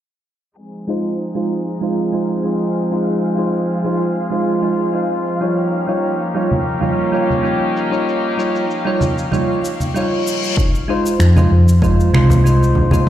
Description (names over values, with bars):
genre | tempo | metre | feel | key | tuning
sunset chillout | 96 BPM | 4/4 | straight | F minor | A4 = 436 Hz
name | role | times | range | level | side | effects
twinkling granular texture | texture | 1.8-10.6 s | F5 to F6 | -33 LUFS | right 1 dB | built-in reverb
rich chamber string section | sustained chords | 0.6-10.5 s | F3 to Ab4 | -22 LUFS | left 1 dB | low-pass filter
electronic shaker and finger snaps | drums | 0.6-13.1 s | none | -30 LUFS | left 1 dB | studio reverb
soft electric-piano-like synth keys | accompaniment | 0.9-13.1 s | G3 to Db5 | -18 LUFS | moving between left 3 dB and right 4 dB | chorus, auto-pan, low-pass filter, digital delay
congas | percussion | 6.5-13.0 s | none | -19 LUFS | right 1 dB | none
reverse cymbal | sound effects | 9.8-10.6 s | none | -27 LUFS | left 5 dB | none
electronic kick drum | drums | 10.6-13.1 s | none | -16 LUFS | equal | studio reverb
woody fretless electric bass | bass | 11.2-13.1 s | C2 to F2 | -11 LUFS | equal | tube saturation, wide subtle chorus
room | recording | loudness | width
light reverb, digital ambience | played on a big sound system in a bare room, large studio reverb, low-pass filter | -14 LUFS | side -11 dB against mid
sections
0.6-10.6 A section; 10.6-13.1 B section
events
filter sweep on synth keys 0.6-10.6; filter sweep on string section 0.6-10.6; filter sweep 0.6-10.6; reverse cymbal 9.8-10.6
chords
0.6 Fm7; 5.6 Eb9; 10.6 Fm7